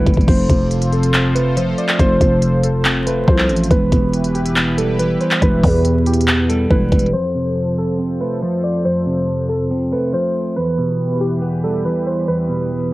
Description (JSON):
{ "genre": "hip hop, trap", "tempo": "140 BPM", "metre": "4/4", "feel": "half-time", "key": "unclear", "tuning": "A4 = 442 Hz", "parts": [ { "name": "muted felt-like synth keys", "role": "melody", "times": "0.0-12.9 s", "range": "G4 to D5", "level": "-22 LUFS", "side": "equal", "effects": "chorus, cassette tape" }, { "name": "clean electric guitar", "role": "accompaniment", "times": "0.0-12.9 s", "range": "E2 to C4", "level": "-19 LUFS", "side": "right 1 dB", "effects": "wide subtle chorus, cassette tape" }, { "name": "sweeping resonant pad", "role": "sustained chords", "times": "0.0-12.9 s", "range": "E2 to C5", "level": "-25 LUFS", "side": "equal", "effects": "chorus, cassette tape" }, { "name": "growling 808-style bass", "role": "bass", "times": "0.0-7.1 s", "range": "E1 to E2", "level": "-18 LUFS", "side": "equal", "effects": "none" }, { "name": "trap drum kit", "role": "drums", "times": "0.1-7.1 s", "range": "crash cymbal, handclaps, hi-hat, kick drum", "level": "-17 LUFS", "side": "equal", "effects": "overdrive" } ], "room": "little or no reverb", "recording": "home recording on cassette, vinyl crackle, low-pass filter", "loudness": "-14 LUFS", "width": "side -18 dB against mid", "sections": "0.0-7.1 A section; 7.1-12.9 B section", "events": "drum fill 0.0; filter sweep 7.1-12.9", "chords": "0.3 F; 3.7 Em; 7.1 F; 10.6 Em" }